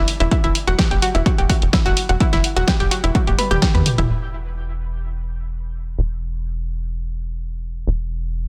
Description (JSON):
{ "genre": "progressive house", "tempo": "127 BPM", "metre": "4/4", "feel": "straight", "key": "E minor", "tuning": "A4 = 441 Hz", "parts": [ { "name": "analog pluck", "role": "arpeggios", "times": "0.0-4.0 s", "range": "E4 to B4", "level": "-25 LUFS", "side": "equal", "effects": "chorus, sidechain pumping, dub echo" }, { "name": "tight sequencer bass", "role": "bass", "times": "0.0-8.5 s", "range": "D1 to E2", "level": "-24 LUFS", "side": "equal", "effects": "sidechain pumping" }, { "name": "house drum kit", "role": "drums", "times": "0.1-4.1 s", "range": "hi-hat, snare drum, toms", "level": "-24 LUFS", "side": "equal", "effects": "none" }, { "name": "electronic kick drum", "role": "drums", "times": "0.3-3.7 s", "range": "none", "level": "-21 LUFS", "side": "equal", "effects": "overdrive" } ], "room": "little or no reverb", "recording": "dense, heavily limited modern master", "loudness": "-20 LUFS", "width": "mono", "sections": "0.0-4.1 A section; 4.1-8.5 B section", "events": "drum fill 3.1-4.1", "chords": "0.3 Emadd9; 4.1 N.C.", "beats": "| 0.31 0.79 1.26 1.73 | 2.20 2.68 3.15 3.62 | 4.09 4.57 5.04 5.51 | 5.98 6.46 6.93 7.40 | 7.87 8.35" }